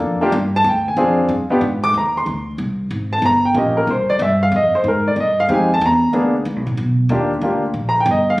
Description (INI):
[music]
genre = jazz, small-group swing and bop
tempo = 186 BPM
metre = 4/4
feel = swing 64% on 8ths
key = C minor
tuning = A4 = 440 Hz
[part]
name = warm upright piano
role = accompaniment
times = 0.0-8.4 s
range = Ab3 to D6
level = -16 LUFS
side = equal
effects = none
[part]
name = upright bass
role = bass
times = 0.0-8.4 s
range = G1 to Ab2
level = -20 LUFS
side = equal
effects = none
[sound]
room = light reverb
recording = recorded on a phone in the room, studio reverb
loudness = -15 LUFS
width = side -20 dB against mid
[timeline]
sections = 0.0-1.9 A section; 1.9-8.4 A section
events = none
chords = 0.0 Gm7; 0.7 Dm7b5; 1.3 G7b9; 1.9 Cmadd9; 3.2 Gm7b5; 3.9 C5; 4.5 Fm9; 5.8 E7#11; 7.1 Ebmaj9